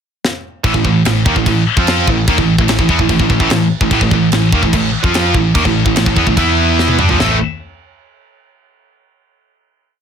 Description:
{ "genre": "heavy metal", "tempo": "146 BPM", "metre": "4/4", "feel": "straight", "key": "A minor", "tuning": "A4 = 440 Hz", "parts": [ { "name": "tight metal drum kit", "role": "drums", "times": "0.2-7.3 s", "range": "crash cymbal, kick drum, snare drum, toms", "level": "-17 LUFS", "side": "equal", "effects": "soft clipping on kick, soft clipping on snare" }, { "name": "high-gain distorted guitar", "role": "riff", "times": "0.6-7.4 s", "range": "A2 to F4", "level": "-19 LUFS", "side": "left 1 dB", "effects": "distortion" }, { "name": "scooped high-gain guitar", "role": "riff", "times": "0.6-7.4 s", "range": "A2 to F4", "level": "-17 LUFS", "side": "left 11 dB", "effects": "distortion" }, { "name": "tight distorted guitar", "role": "riff", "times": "0.6-7.4 s", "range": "A2 to F4", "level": "-17 LUFS", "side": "right 12 dB", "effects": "distortion" }, { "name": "overdriven picked electric bass", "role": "bass", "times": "0.6-7.4 s", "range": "A1 to G2", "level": "-18 LUFS", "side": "left 1 dB", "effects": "none" } ], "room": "light reverb", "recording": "dense, heavily limited modern master", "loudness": "-11 LUFS", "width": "side -7 dB against mid", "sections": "0.0-0.6 pickup bar; 0.6-7.2 riff; 7.2-8.8 final chord", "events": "drum fill 0.2-0.6, 6.8-7.2", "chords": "0.0 N.C.; 0.6 Am; 6.4 E5; 7.0 Bb6; 7.2 A5" }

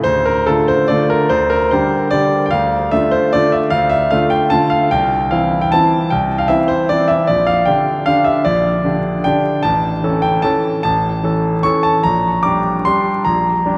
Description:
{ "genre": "classical, piano waltz", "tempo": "142-160 BPM", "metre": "3/4", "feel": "rubato", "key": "D minor", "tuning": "A4 = 440 Hz", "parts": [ { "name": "bright concert grand piano", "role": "solo", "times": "0.0-13.8 s", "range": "A1 to D6", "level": "-15 LUFS", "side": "equal", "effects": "none" } ], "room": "wet cathedral reverb, RT60 5.2 s", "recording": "in a vast, echoing space, vinyl crackle", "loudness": "-15 LUFS", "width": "mono", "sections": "0.0-13.8 A section", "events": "none", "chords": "0.0 Dm; 1.3 G5/D; 2.5 Dm; 4.9 Am/C; 7.3 Gm/Bb; 9.6 A; 12.0 Gm/Bb" }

